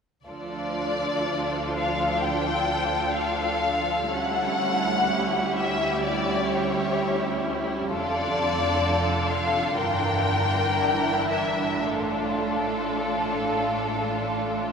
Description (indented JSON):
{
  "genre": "classical, slow romantic movement for string orchestra",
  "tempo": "62 BPM",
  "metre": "4/4",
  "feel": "uneven beats, rubato",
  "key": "D minor",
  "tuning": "A4 = 438 Hz",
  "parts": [
    { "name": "warm symphonic violin section", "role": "melody", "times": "0.3-14.7 s", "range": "A4 to G5", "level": "-26 LUFS", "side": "left 3 dB", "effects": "none" },
    { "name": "warm symphonic violin section", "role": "second line", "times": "0.3-14.7 s", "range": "E4 to Bb4", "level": "-28 LUFS", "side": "equal", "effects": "none" },
    { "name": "rich symphonic viola section", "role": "accompaniment", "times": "0.3-14.7 s", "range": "D3 to D4", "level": "-29 LUFS", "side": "right 3 dB", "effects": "none" },
    { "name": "rich studio cello section", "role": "bass", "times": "0.3-14.7 s", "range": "D2 to A2", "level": "-33 LUFS", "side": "right 2 dB", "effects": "none" },
    { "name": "rich studio double bass section", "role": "bass", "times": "0.3-14.7 s", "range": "F1 to D2", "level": "-37 LUFS", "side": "right 3 dB", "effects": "none" }
  ],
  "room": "wet cathedral reverb, RT60 4.4 s",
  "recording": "recorded in a church or concert hall",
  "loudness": "-22 LUFS",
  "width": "side -6 dB against mid",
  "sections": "0.3-14.7 A section",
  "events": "none",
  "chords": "0.3 Dm; 4.1 C#dim/D; 7.9 Dm/F; 9.8 Em7b5/G; 11.8 Dm/A",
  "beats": "| 0.27 1.28 2.22 3.15 | 4.12 5.09 6.04 7.00 | 7.93 8.85 9.80 10.79 | 11.85 12.91 13.98"
}